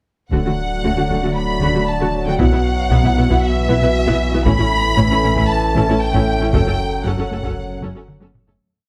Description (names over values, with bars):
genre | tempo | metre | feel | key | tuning
cinematic, hybrid orchestral and electronic film score | 116 BPM | 4/4 | straight | F# phrygian | A4 = 440 Hz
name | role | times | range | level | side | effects
warm symphonic violin section | melody | 0.3-8.1 s | E5 to B5 | -25 LUFS | equal | none
rich symphonic violin section | second line | 0.3-8.1 s | E5 to B5 | -30 LUFS | equal | none
rich symphonic viola section | accompaniment | 0.3-8.5 s | A3 to A4 | -27 LUFS | equal | none
bright trombone section | sustained chords | 0.3-8.3 s | F#2 to F#3 | -30 LUFS | equal | none
dark analog pad | sustained chords | 0.3-8.6 s | E3 to E5 | -28 LUFS | equal | subtle chorus
warm French horn section | sustained chords | 0.3-8.3 s | A3 to A4 | -29 LUFS | equal | none
warbly dusty pluck | arpeggios | 0.3-8.5 s | D3 to B4 | -30 LUFS | equal | none
dark symphonic cello section | bass | 0.3-8.5 s | F#2 to D3 | -26 LUFS | equal | none
rich symphonic double bass section | bass | 0.3-7.9 s | F#1 to D2 | -25 LUFS | equal | none
saturated sub bass | bass | 0.3-8.6 s | D1 to B1 | -25 LUFS | equal | none
taiko ensemble | drums | 0.3-8.7 s | none | -25 LUFS | equal | none
room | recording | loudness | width
moderate scoring stage reverb, RT60 1.7 s | none | -17 LUFS | mono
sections
0.3-8.6 theme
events
fade-out 6.5-8.6; drum fill 8.1-8.6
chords
0.3 D; 2.4 Bsus4; 4.5 A; 6.5 F#m